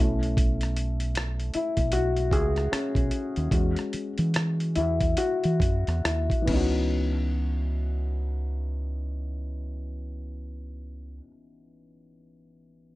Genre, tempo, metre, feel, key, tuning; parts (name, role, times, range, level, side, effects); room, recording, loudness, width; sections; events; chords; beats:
R&B, neo-soul; 66-78 BPM; 4/4; swing 60% on 16ths; C# minor; A4 = 438 Hz
dark grand piano; accompaniment; 0.0-13.0 s; E3 to G#4; -30 LUFS; left 2 dB; low-pass filter, plate reverb
deep dub fingered electric bass; bass; 0.0-11.2 s; B1 to E3; -27 LUFS; right 1 dB
dusty soul sampler-style drum kit; drums; 0.2-6.7 s; crash cymbal, hi-hat, kick drum, rim click; -27 LUFS; equal
light reverb; dark, warm production; -24 LUFS; side -18 dB against mid
0.0-6.9 A section; 6.9-10.5 B section
grand piano solo 0.0-6.9; filter sweep on grand piano 0.0-6.9; slowing down 0.4-6.9
0.0 B9sus4; 3.5 E6; 6.5 C#m11
| 0.37 1.15 1.92 2.71 | 3.51 4.33 5.17 6.03 | 6.92 7.83 8.73 9.64